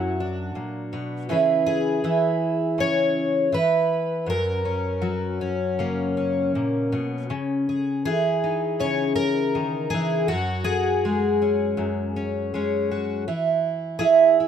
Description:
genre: folk, solo fingerstyle acoustic guitar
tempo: 81 BPM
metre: 4/4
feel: straight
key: F# mixolydian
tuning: A4 = 440 Hz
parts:
  - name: fingerpicked twelve-string acoustic guitar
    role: solo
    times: 0.0-14.5 s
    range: F#2 to C#5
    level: -21 LUFS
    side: right 1 dB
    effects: none
room: light reverb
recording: close, detailed microphones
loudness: -21 LUFS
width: side -8 dB against mid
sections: 0.0-7.3 A section; 7.3-14.5 B section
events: none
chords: 0.0 Bm; 1.3 C#m7; 4.3 F#; 7.3 C#madd9; 10.3 F#sus2; 13.3 E

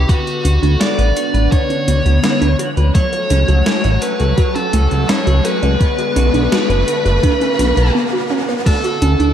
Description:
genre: synthwave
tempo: 84 BPM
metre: 4/4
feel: straight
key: B minor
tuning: A4 = 435 Hz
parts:
  - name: high-gain lead guitar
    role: melody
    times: 0.0-9.3 s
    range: F#4 to D5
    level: -19 LUFS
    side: equal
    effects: distortion, diffuse ambient delay, shimmer reverb
  - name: analog string pad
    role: sustained chords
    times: 0.0-9.3 s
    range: D3 to F#4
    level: -22 LUFS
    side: left 2 dB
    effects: ensemble chorus, sidechain pumping, shimmer reverb
  - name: warbly dusty pluck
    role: arpeggios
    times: 0.0-9.3 s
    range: A3 to C#5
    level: -22 LUFS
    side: right 3 dB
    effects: chorus, diffuse ambient delay
  - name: electric guitar at the edge of break-up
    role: riff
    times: 0.0-9.3 s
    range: F#3 to B4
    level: -29 LUFS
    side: right 1 dB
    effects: wide subtle chorus, low-pass filter, diffuse ambient delay, shimmer reverb
  - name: chorused synth bass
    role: bass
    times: 0.0-9.3 s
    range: F#1 to D2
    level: -14 LUFS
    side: equal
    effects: sidechain pumping
  - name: riser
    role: sound effects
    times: 1.2-8.7 s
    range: none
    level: -27 LUFS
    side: right 1 dB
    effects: none
  - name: electronic kick drum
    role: drums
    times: 0.1-8.8 s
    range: none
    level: -14 LUFS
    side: equal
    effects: overdrive
  - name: gated 80s digital drum machine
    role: drums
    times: 0.1-9.3 s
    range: crash cymbal, hi-hat, snare drum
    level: -22 LUFS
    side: left 1 dB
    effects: gated reverb, gated reverb snare, overdrive
room: moderate plate reverb, RT60 2.0 s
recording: dreamy mix soaked in reverb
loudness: -12 LUFS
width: side -9 dB against mid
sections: 0.0-8.7 A section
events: filter sweep on synth arpeggio sound 0.0-8.7; riser 1.2-8.7; break 7.9-8.7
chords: 0.1 Bmadd9; 2.9 F#m; 5.8 Bmadd9; 8.7 Dmaj7

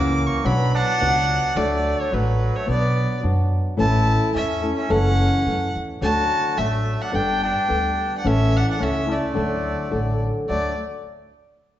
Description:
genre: mexican folk, mariachi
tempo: 108 BPM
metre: 2/4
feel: straight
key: D major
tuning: A4 = 439 Hz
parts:
  - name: warm violin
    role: melody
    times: 0.0-10.8 s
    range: B4 to D6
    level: -24 LUFS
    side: left 1 dB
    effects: none
  - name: warm trumpet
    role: second line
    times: 0.0-10.8 s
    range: F#3 to F#4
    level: -29 LUFS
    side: right 4 dB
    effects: none
  - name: flamenco guitar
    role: accompaniment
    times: 0.0-10.7 s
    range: F#2 to A4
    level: -24 LUFS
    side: left 1 dB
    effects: none
  - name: upright bass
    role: bass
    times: 0.0-10.8 s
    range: F#1 to F#2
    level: -23 LUFS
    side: equal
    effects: none
room: wet recital hall reverb, RT60 1.4 s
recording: heard from further back in the room, nothing above 7.8 kHz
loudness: -18 LUFS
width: side -12 dB against mid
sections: 0.0-1.6 A section; 1.6-10.5 B section; 10.5-11.6 C section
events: none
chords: 0.5 Bm; 1.6 D; 2.7 Bm; 3.8 A; 4.9 F#m7; 6.0 D; 7.1 Gadd9; 8.3 A; 9.4 D

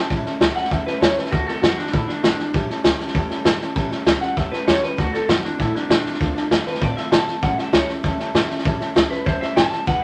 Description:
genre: rockabilly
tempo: 196 BPM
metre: 4/4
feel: straight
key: A mixolydian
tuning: A4 = 441 Hz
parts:
  - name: electric guitar through a small old amp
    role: melody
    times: 0.0-10.0 s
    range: D4 to A5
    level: -27 LUFS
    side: equal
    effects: none
  - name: picked steel-string acoustic guitar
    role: accompaniment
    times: 0.0-10.0 s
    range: A2 to B4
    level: -32 LUFS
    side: equal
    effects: none
  - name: warm upright piano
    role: accompaniment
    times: 0.0-10.0 s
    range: B4 to A5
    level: -36 LUFS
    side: equal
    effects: none
  - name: upright bass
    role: bass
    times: 0.1-10.0 s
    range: E1 to C3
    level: -33 LUFS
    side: equal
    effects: none
  - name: vintage drum kit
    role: drums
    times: 0.1-9.9 s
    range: hi-hat, kick drum, snare drum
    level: -22 LUFS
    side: equal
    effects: none
room: moderate studio reverb, RT60 0.7 s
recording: none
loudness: -20 LUFS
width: mono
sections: 0.1-10.0 A section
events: none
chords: 0.1 A7; 1.3 D7; 2.5 A7; 5.0 D7; 6.2 Dm7; 7.4 A7

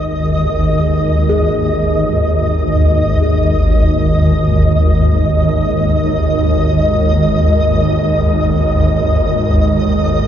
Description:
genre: dark ambient drone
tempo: free time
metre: none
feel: none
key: unclear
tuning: A4 = 440 Hz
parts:
  - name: dark analog pad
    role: sustained chords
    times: 0.0-10.3 s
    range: G#3 to D#5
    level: -26 LUFS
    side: equal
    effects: none
  - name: swarming drone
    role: drone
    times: 0.0-10.3 s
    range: G#1 to D#2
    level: -12 LUFS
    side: equal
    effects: built-in reverb
  - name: flickering grainy texture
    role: texture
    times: 0.0-10.3 s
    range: D#5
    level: -19 LUFS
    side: equal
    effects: built-in reverb
  - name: gamelan-type bossed gongs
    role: arpeggios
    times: 1.3-9.0 s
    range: G#4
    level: -24 LUFS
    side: equal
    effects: ping-pong delay
room: wet cathedral reverb, RT60 6.6 s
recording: in a vast, echoing space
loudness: -11 LUFS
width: side -10 dB against mid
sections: 0.0-10.3 A section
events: none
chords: 0.0 G#5

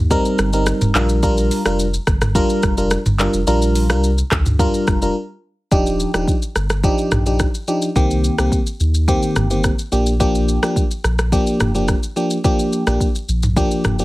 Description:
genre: afrobeats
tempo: 107 BPM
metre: 4/4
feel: straight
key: Bb major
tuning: A4 = 439 Hz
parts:
  - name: saturated sub bass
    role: bass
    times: 0.0-14.0 s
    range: Eb1 to Eb2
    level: -19 LUFS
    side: equal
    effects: none
  - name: FM electric piano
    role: accompaniment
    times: 0.1-14.0 s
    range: Eb3 to Bb4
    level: -18 LUFS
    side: equal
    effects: chorus
  - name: afro-pop drum kit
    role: drums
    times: 0.1-14.0 s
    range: handclaps, hi-hat, kick drum, rim click, shaker, toms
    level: -19 LUFS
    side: equal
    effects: none
room: light reverb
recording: heavily compressed radio sound, multiband compression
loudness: -15 LUFS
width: side -18 dB against mid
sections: 0.0-5.7 A section; 5.7-14.0 B section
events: break 5.2-5.7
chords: 0.0 Cm7; 0.9 Bb6; 5.7 Ebmaj9; 8.0 Cm7; 9.9 Bb6

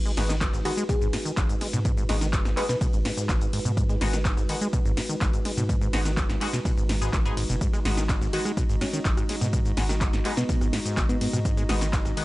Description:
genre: acid house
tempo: 125 BPM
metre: 4/4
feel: straight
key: G# minor pentatonic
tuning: A4 = 440 Hz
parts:
  - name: dark analog pad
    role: sustained chords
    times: 0.0-12.2 s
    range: G#3 to D#5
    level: -34 LUFS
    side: equal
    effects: chorus, sidechain pumping
  - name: acid bass, saw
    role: riff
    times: 0.1-12.2 s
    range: G#2 to G#3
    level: -31 LUFS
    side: equal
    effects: overdrive, sidechain pumping, analog delay
  - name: breakbeat sampler-style drum kit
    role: drums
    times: 0.1-12.2 s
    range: hi-hat, snare drum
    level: -44 LUFS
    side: equal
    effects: none
  - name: punchy analog drum machine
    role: drums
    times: 0.1-12.2 s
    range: handclaps, hi-hat, ride cymbal, rim click, shaker, snare drum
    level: -31 LUFS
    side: equal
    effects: none
  - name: band-passed chord stab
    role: stabs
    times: 0.2-12.2 s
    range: G#3 to G#4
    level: -34 LUFS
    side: left 2 dB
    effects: phaser, analog delay
  - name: saturated sub bass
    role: bass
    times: 0.2-12.1 s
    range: F#1 to G#2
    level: -28 LUFS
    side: equal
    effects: sidechain pumping
  - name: electronic kick drum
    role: drums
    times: 0.4-12.0 s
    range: none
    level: -26 LUFS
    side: equal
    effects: overdrive
  - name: bell-like FM electric piano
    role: melody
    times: 0.7-2.8, 8.3-11.3 s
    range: B3 to B4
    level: -32 LUFS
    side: equal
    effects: chorus, analog delay
room: little or no reverb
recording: dry, gritty hardware recording, nothing above 10.9 kHz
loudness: -23 LUFS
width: side -19 dB against mid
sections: 0.0-12.2 A section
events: none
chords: 0.0 G#m7

